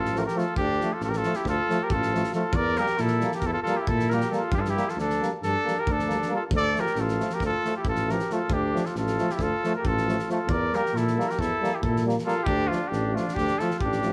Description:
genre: balkan folk, Balkan brass band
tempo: 272 BPM (eighths)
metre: 9/8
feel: straight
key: D minor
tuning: A4 = 439 Hz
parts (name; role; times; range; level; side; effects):
- warm trumpet; melody; 0.0-14.1 s; F4 to D5; -30 LUFS; equal; none
- warm trumpet; second line; 0.0-14.1 s; D4 to Bb4; -34 LUFS; equal; none
- mellow tuba; bass; 0.0-14.1 s; A1 to Bb2; -31 LUFS; equal; none
- warm euphonium; accompaniment; 0.1-14.1 s; F3 to G3; -36 LUFS; equal; none
- loose indie drum kit; percussion; 0.1-14.1 s; kick drum, snare drum; -34 LUFS; equal; none
- bright trombone; accompaniment; 0.2-14.1 s; A3 to Bb3; -36 LUFS; equal; none
room: moderate stone room reverb, RT60 1.2 s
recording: band playing live in one room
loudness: -26 LUFS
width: mono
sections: 0.0-14.1 A section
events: none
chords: 0.0 Dm; 2.5 Edim; 4.5 Gm; 6.5 Dm; 10.5 Edim; 12.5 Dm

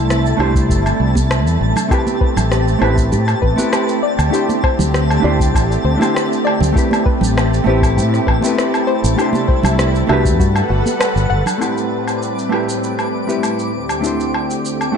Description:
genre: sunset chillout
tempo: 99 BPM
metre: 4/4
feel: straight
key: A dorian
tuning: A4 = 440 Hz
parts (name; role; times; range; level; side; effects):
- hollow-body jazz guitar; accompaniment; 0.0-15.0 s; A3 to C5; -20 LUFS; moving between left 3 dB and right 4 dB; auto-pan, ping-pong delay
- lush unison pad; sustained chords; 0.0-15.0 s; D2 to F#5; -21 LUFS; equal; chorus
- fretless electric bass; bass; 0.0-11.4 s; G1 to A2; -16 LUFS; equal; none
- twinkling granular texture; texture; 0.0-15.0 s; A5 to D6; -28 LUFS; right 1 dB; built-in reverb
- electronic rim click, shaker and woodblock; drums; 0.1-14.9 s; none; -22 LUFS; equal; none
- congas; percussion; 0.4-11.6 s; none; -25 LUFS; right 4 dB; none
- electronic kick drum; drums; 0.6-10.5 s; none; -16 LUFS; equal; overdrive
- soft round pluck; arpeggios; 1.9-11.5 s; F#4 to F#5; -24 LUFS; left 4 dB; chorus, ping-pong delay
room: moderate lush hall reverb, RT60 2.3 s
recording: dark, warm production, nothing above 10.4 kHz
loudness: -13 LUFS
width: side -7 dB against mid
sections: 0.0-11.6 A section; 11.6-15.0 B section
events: none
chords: 0.0 C6; 1.9 Am9; 4.0 D7sus4; 6.8 Am9; 9.2 C6; 10.4 Gmaj9; 11.6 Am9; 13.7 D7sus4

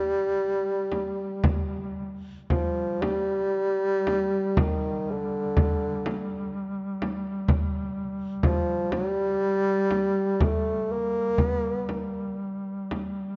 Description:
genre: caucasian folk, Caucasian lament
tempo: 56-64 BPM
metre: 3/4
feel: rubato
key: G minor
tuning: A4 = 438 Hz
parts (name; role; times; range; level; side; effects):
- dark bassoon; melody; 0.0-12.4 s; D3 to Bb3; -28 LUFS; equal; none
- mellow duduk; drone; 0.0-13.4 s; G3; -35 LUFS; equal; none
- frame drum; percussion; 0.9-13.1 s; none; -29 LUFS; equal; none
room: moderate concert hall reverb, RT60 2.4 s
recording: dark, warm production, nothing above 7.6 kHz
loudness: -27 LUFS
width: mono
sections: 0.0-2.5 A section; 2.5-13.4 B section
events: none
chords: none

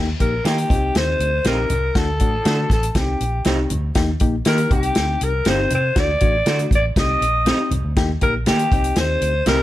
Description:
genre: uptempo 1960s-style soul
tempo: 120 BPM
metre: 4/4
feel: straight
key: unclear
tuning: A4 = 440 Hz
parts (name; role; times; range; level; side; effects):
- reed electric piano; accompaniment; 0.0-9.6 s; A3 to G4; -26 LUFS; left 4 dB; phaser
- vintage muted fingered electric bass; bass; 0.0-9.6 s; G1 to Eb3; -22 LUFS; equal; none
- congas; percussion; 0.1-9.6 s; none; -32 LUFS; right 2 dB; none
- growling alto saxophone; melody; 0.2-9.6 s; G4 to Eb5; -21 LUFS; left 1 dB; none
- warm soul drum kit; drums; 0.2-9.6 s; hi-hat, kick drum, snare drum; -21 LUFS; equal; none
- electric guitar through a small old amp; stabs; 0.4-9.6 s; A3 to G4; -26 LUFS; right 5 dB; spring reverb
room: studio reverb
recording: none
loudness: -16 LUFS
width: side -14 dB against mid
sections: 0.0-9.6 A section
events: none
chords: 0.0 Eb; 0.7 Cm; 2.0 D; 3.0 Cm; 4.0 Eb; 4.7 Cm; 6.0 D; 7.0 Cm; 8.0 Eb; 8.7 Cm

